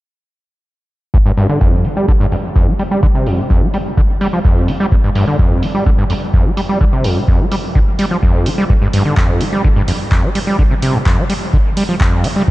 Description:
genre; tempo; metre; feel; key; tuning
acid house; 127 BPM; 4/4; straight; unclear; A4 = 444 Hz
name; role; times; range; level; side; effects
overdriven acid bass; riff; 1.1-12.5 s; F2 to G3; -15 LUFS; equal; distortion, tube saturation, diffuse ambient delay
electronic kick drum; drums; 1.1-12.5 s; none; -14 LUFS; equal; none
punchy analog drum machine; drums; 1.4-12.3 s; handclaps, hi-hat; -26 LUFS; right 1 dB; low-pass filter on hats, low-pass filter on snare
room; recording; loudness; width
moderate cathedral reverb, RT60 5.8 s; dreamy mix soaked in reverb; -11 LUFS; side -18 dB against mid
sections
1.1-12.5 A section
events
filter sweep on drum 1.1-12.5; filter sweep on acid bass 1.1-12.5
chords
none

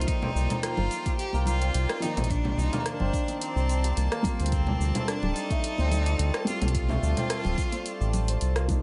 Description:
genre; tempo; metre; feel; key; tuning
organic downtempo; 108 BPM; 4/4; swing 53% on 16ths; C dorian; A4 = 439 Hz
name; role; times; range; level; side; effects
clear cello; melody; 0.0-8.4 s; Bb3 to G4; -36 LUFS; equal; delay
felt-muted upright piano; accompaniment; 0.0-8.8 s; Eb3 to F4; -39 LUFS; equal; sidechain pumping, digital delay
rich chamber string section; sustained chords; 0.0-8.8 s; Eb3 to A5; -41 LUFS; equal; sidechain pumping
santur; arpeggios; 0.0-8.8 s; A3 to C5; -38 LUFS; equal; digital delay
round analog bass; bass; 0.0-8.8 s; D1 to D2; -28 LUFS; equal; tube saturation
deep house drum kit; drums; 0.0-8.8 s; cabasa, congas, hi-hat, rim click; -35 LUFS; equal; overdrive
electronic kick drum; drums; 0.1-8.8 s; none; -32 LUFS; equal; none
congas and bongos; percussion; 0.2-8.8 s; none; -39 LUFS; equal; none
room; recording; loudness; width
light reverb, small room ambience; nothing above 10.8 kHz; -27 LUFS; mono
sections
0.0-8.8 A section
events
none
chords
0.1 Cmadd9; 4.5 Dm

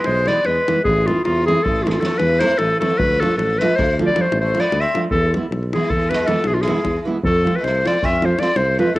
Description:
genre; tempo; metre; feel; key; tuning
balkan folk, Balkan wedding band; 310 BPM (eighths); 11/8; straight; E phrygian dominant; A4 = 440 Hz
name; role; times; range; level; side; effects
bright clarinet; melody; 0.0-9.0 s; F4 to E5; -18 LUFS; left 1 dB; cassette tape
sitar; second line; 0.0-9.0 s; C3 to C4; -26 LUFS; right 2 dB; cassette tape
davul; percussion; 0.0-9.0 s; none; -26 LUFS; left 2 dB; none
mellow tuba; bass; 0.1-9.0 s; A1 to F2; -22 LUFS; equal; none
nylon-string guitar; accompaniment; 0.3-8.9 s; E3 to F4; -22 LUFS; right 2 dB; cassette tape
room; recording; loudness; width
moderate spring reverb, RT60 1.7 s, small room ambience; home recording on cassette; -16 LUFS; side -18 dB against mid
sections
0.0-7.2 A section; 7.2-9.0 B section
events
none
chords
0.0 E; 0.9 Am; 3.0 Dm; 5.1 E; 7.2 F

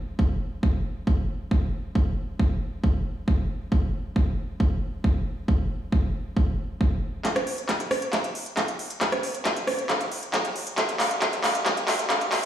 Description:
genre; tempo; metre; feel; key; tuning
techno; 136 BPM; 4/4; straight; none; none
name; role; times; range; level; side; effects
electronic kick drum; drums; 0.2-12.2 s; none; -24 LUFS; equal; overdrive, high-pass filter on kick
techno drum kit; drums; 7.2-12.5 s; handclaps, hi-hat, rim click; -24 LUFS; equal; overdrive, low-pass filter on snare, low-pass filter on hats
room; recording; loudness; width
wet stone room reverb, RT60 1.2 s; played on a big sound system in a bare room, stone room reverb, high-pass filter, small room ambience; -23 LUFS; side -11 dB against mid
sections
0.0-7.2 A section; 7.2-12.5 B section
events
build-up 7.2-12.5; drum fill 7.2-12.5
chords
none

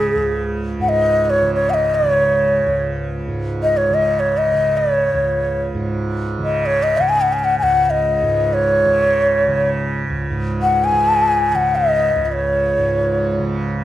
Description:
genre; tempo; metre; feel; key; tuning
indian classical, Hindustani; free time; none; none; unclear; A4 = 444 Hz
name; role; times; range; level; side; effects
breathy hollow bansuri; melody; 0.0-13.4 s; Ab4 to Ab5; -16 LUFS; left 1 dB; none
tanpura; drone; 0.0-13.8 s; Db2 to Db3; -21 LUFS; right 2 dB; none
room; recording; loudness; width
moderate recital hall reverb, RT60 1.4 s; dark, warm production; -15 LUFS; side -13 dB against mid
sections
0.0-10.3 A section; 10.3-13.8 A section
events
none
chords
none

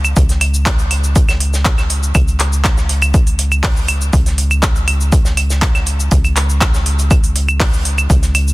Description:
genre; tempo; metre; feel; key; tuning
melodic techno; 121 BPM; 4/4; straight; unclear; A4 = 443 Hz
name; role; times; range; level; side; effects
tight sequencer bass; bass; 0.0-8.5 s; C#2; -15 LUFS; equal; tube saturation, sidechain pumping
techno drum kit; drums; 0.0-8.5 s; claves, handclaps, hi-hat, shaker; -18 LUFS; equal; sidechain pumping on hats, sidechain pumping on perc, sidechain pumping on cymbals
electronic kick drum; drums; 0.2-8.2 s; none; -14 LUFS; equal; none
warm soul drum kit; drums; 0.2-8.5 s; hi-hat, snare drum; -28 LUFS; right 2 dB; sidechain pumping on hats, high-pass filter on hats, high-pass filter on snare, high-pass filter on room
room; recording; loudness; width
little or no reverb; dense, heavily limited modern master; -12 LUFS; side -21 dB against mid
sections
0.0-8.5 A section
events
none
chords
none

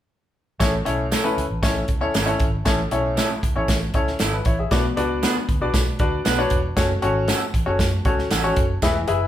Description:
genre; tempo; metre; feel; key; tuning
uptempo 1960s-style soul; 117 BPM; 4/4; straight; A major; A4 = 440 Hz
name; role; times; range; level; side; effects
bright baby grand piano; accompaniment; 0.6-9.3 s; A2 to E5; -23 LUFS; left 2 dB; none
vintage muted fingered electric bass; bass; 0.6-9.3 s; E1 to F#2; -26 LUFS; equal; none
natural country drum kit; drums; 0.6-9.2 s; hi-hat, kick drum, snare drum; -23 LUFS; equal; none
tambourine; percussion; 0.6-8.9 s; none; -33 LUFS; right 6 dB; none
electric guitar through a small old amp; stabs; 1.1-8.4 s; A3 to B4; -26 LUFS; right 3 dB; none
room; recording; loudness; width
moderate large studio reverb, RT60 1.0 s; band playing live in one room; -19 LUFS; side -11 dB against mid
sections
0.6-2.7 A section; 2.7-9.3 B section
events
none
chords
0.6 A; 4.7 Bm; 6.8 F#m

